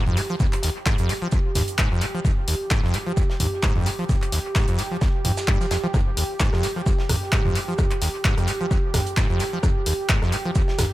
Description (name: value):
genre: acid house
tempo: 130 BPM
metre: 4/4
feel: swing 55% on 16ths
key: unclear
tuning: A4 = 440 Hz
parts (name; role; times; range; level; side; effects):
- warm analog pad; sustained chords; 0.0-10.9 s; G4; -30 LUFS; right 2 dB; chorus, sidechain pumping
- acid bass, saw; riff; 0.0-10.9 s; Eb2 to F3; -25 LUFS; equal; analog chorus, sidechain pumping, dub echo
- punchy analog drum machine; drums; 0.1-10.9 s; handclaps, hi-hat, rim click, toms; -27 LUFS; equal; overdrive, dub echo
- tight metal drum kit; drums; 0.2-10.9 s; hi-hat, shaker, snare drum; -36 LUFS; right 3 dB; high-pass filter on hats, high-pass filter on snare, high-pass filter on perc, high-pass filter on room, dub echo
- electronic kick drum; drums; 0.4-10.7 s; none; -22 LUFS; equal; overdrive
room: light reverb, studio reverb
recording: echo-heavy mix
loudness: -20 LUFS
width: side -16 dB against mid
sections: 0.0-10.9 A section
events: none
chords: none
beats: | 0.40 0.86 1.32 1.79 | 2.25 2.71 3.17 3.63 | 4.09 4.56 5.02 5.48 | 5.94 6.40 6.86 7.33 | 7.79 8.25 8.71 9.17 | 9.63 10.09 10.56